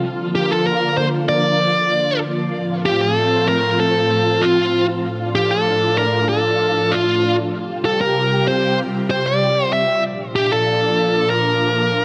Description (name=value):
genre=synthwave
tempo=96 BPM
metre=4/4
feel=straight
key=unclear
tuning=A4 = 441 Hz
part: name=analog string pad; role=sustained chords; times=0.0-12.0 s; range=A2 to G4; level=-22 LUFS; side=equal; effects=ensemble chorus
part: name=bluesy overdriven lead guitar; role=melody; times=0.4-12.0 s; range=F4 to E5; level=-19 LUFS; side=equal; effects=distortion, tape echo
room=moderate lush hall reverb, RT60 1.9 s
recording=nothing above 10.7 kHz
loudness=-18 LUFS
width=mono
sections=0.0-12.0 A section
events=none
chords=0.0 Bb; 2.5 F; 5.0 Dm; 7.5 Csus4; 10.0 Bb